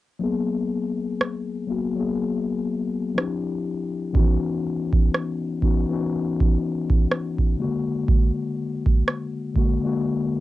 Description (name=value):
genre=contemporary R&B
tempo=61 BPM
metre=4/4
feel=swing 58% on 16ths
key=G# minor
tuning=A4 = 442 Hz
part: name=mellow tine electric piano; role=accompaniment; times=0.2-10.4 s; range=C#3 to G#4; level=-24 LUFS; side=left 4 dB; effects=medium stereo tremolo, low-pass filter, cassette tape
part: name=booming analog drum machine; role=drums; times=1.2-9.8 s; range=kick drum, rim click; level=-19 LUFS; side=right 2 dB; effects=vintage 12-bit sampler grit, cassette tape
room=light reverb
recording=home recording on cassette, nothing above 10.4 kHz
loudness=-21 LUFS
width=side -16 dB against mid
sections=0.2-10.4 A section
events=filter sweep on tine electric piano 0.2-10.4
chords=0.2 G#m9; 3.2 Dm11; 4.1 C#m11; 7.6 A#7b13